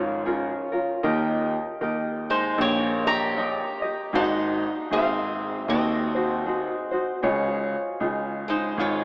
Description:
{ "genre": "Hawaiian", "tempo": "78 BPM", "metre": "4/4", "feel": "swing 60% on 8ths", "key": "Db major", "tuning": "A4 = 440 Hz", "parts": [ { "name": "metal-body resonator slide guitar", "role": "melody", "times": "0.0-9.0 s", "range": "Db4 to Bb5", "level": "-28 LUFS", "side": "equal", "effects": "none" }, { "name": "picked swing-style acoustic guitar", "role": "second line", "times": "0.0-9.0 s", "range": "F3 to G4", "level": "-32 LUFS", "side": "equal", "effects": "none" }, { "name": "tenor ukulele", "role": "accompaniment", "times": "0.0-9.0 s", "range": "Db4 to Eb5", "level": "-27 LUFS", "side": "equal", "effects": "none" }, { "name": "clear baby grand piano", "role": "bass", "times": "0.0-9.0 s", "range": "Ab1 to Eb2", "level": "-27 LUFS", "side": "equal", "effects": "none" } ], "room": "wet cathedral reverb, RT60 5.1 s", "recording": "in a vast, echoing space, AM radio sound", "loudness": "-22 LUFS", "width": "side -28 dB against mid", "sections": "0.0-9.0 A section", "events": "none", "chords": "0.0 Db6; 1.0 Eb; 4.1 Ab7; 7.2 Dbadd9", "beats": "0.26 | 1.04 1.81 2.59 3.36 | 4.14 4.91 5.68 6.46 | 7.23 8.01 8.78" }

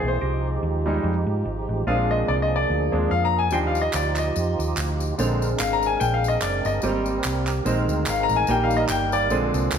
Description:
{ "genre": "uptempo gospel", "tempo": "145 BPM", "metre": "4/4", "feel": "swing 56% on 8ths", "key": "Eb major", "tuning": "A4 = 440 Hz", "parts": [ { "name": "bright grand piano", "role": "accompaniment", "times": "0.0-9.8 s", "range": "D3 to Bb5", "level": "-23 LUFS", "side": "left 2 dB", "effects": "none" }, { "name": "mellow French horn section", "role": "sustained chords", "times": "0.0-9.8 s", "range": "G3 to Ab4", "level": "-32 LUFS", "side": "left 2 dB", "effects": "none" }, { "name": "percussive tonewheel organ", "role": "sustained chords", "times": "0.0-9.8 s", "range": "E3 to Bb4", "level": "-29 LUFS", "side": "right 4 dB", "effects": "slow rotary speaker, chorus vibrato" }, { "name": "hollow-body short-scale fingered electric bass", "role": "bass", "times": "0.0-9.8 s", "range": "Gb1 to Ab2", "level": "-25 LUFS", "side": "equal", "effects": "none" }, { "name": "tambourine and handclaps", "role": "percussion", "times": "3.5-9.8 s", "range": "none", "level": "-32 LUFS", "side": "right 1 dB", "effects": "none" } ], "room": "moderate large studio reverb, RT60 1.3 s", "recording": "none", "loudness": "-20 LUFS", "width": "side -7 dB against mid", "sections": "0.0-9.8 A section", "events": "grand piano solo 0.0-9.8", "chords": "0.2 Fm9/C; 1.9 Bb7; 3.5 Ebmaj9; 5.2 Bb9; 6.8 Abmaj9; 7.7 Bb9sus4; 8.5 Eb/Bb", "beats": "| 0.22 0.63 1.05 1.46 | 1.87 2.29 2.70 3.11 | 3.53 3.94 4.35 4.77 | 5.18 5.59 6.00 6.42 | 6.83 7.24 7.66 8.07 | 8.48 8.89 9.31 9.72" }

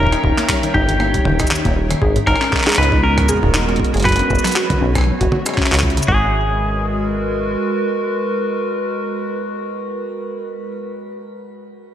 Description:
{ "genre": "IDM", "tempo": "118 BPM", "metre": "4/4", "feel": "swing 56% on 16ths", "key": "G# minor", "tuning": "A4 = 440 Hz", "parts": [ { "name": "semi-hollow electric guitar", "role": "melody", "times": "0.0-10.7 s", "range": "G4 to B4", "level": "-21 LUFS", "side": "equal", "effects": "slapback echo, tape echo, shimmer reverb" }, { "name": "warbly tape-like pad", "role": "sustained chords", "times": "0.0-10.9 s", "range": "G#3 to B5", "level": "-22 LUFS", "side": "right 1 dB", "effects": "chorus, built-in reverb, shimmer reverb" }, { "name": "warbly dusty pluck", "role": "arpeggios", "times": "0.0-6.3 s", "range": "D#2 to G#4", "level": "-22 LUFS", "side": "left 1 dB", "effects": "chorus, digital delay, shimmer reverb" }, { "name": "deep acid bass", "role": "bass", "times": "0.0-7.6 s", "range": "D#1 to C#2", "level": "-19 LUFS", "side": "equal", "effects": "tube saturation" }, { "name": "electronic kick drum", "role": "drums", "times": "0.0-6.2 s", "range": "none", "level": "-20 LUFS", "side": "equal", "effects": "none" }, { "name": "flickering grainy texture", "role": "texture", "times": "0.0-6.1 s", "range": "C#4 to C#5", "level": "-32 LUFS", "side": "equal", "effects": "none" }, { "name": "jungle sampler-style drum kit", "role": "drums", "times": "0.1-6.1 s", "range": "handclaps, hi-hat, rim click, shaker, toms", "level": "-21 LUFS", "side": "equal", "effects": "none" } ], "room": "wet lush hall reverb, RT60 1.7 s", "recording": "big arena sound", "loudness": "-15 LUFS", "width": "side -10 dB against mid", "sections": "0.0-6.1 A section; 6.1-10.2 B section", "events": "none", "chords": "0.0 D#7b9; 2.0 G#m9; 4.0 F#7sus4; 6.1 G#m9", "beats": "0.49 1.00 1.51 | 2.02 2.52 3.03 3.54 | 4.05 4.56 5.07 5.58 | 6.08 6.59 7.10 7.61 | 8.12 8.63 9.13 9.64" }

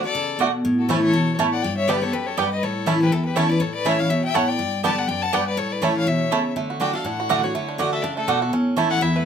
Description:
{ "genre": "bluegrass", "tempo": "244 BPM", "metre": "4/4", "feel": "swing 56% on 8ths", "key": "A mixolydian", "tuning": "A4 = 440 Hz", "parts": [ { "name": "clear fiddle", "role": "melody", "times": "0.0-9.3 s", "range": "A4 to A5", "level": "-27 LUFS", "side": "left 4 dB", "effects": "none" }, { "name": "clear fiddle", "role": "second line", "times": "0.0-6.5 s", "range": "E4 to F#5", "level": "-28 LUFS", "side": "left 5 dB", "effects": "none" }, { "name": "picked steel-string acoustic guitar", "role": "accompaniment", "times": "0.0-9.3 s", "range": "E2 to G4", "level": "-22 LUFS", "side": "left 1 dB", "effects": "none" }, { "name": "bluegrass banjo", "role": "melody", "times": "0.4-9.3 s", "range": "A3 to A4", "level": "-27 LUFS", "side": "right 5 dB", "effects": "none" }, { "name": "mandolin", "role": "stabs", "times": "0.4-8.9 s", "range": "A3 to A5", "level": "-23 LUFS", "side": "right 6 dB", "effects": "none" } ], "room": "moderate studio ambience, RT60 0.5 s", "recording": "none", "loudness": "-19 LUFS", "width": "side -8 dB against mid", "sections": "0.0-6.6 A section; 6.6-9.3 B section", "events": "none", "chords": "0.0 D; 0.6 A; 1.6 G; 2.6 A; 4.6 G; 5.6 A; 6.6 D; 8.5 A", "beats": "0.15 0.40 | 0.65 0.90 1.14 1.39 | 1.64 1.88 2.13 2.38 | 2.62 2.87 3.12 3.36 | 3.61 3.85 4.10 4.35 | 4.59 4.84 5.09 5.33 | 5.58 5.83 6.07 6.32 | 6.56 6.81 7.06 7.30 | 7.55 7.79 8.04 8.29 | 8.53 8.78 9.03" }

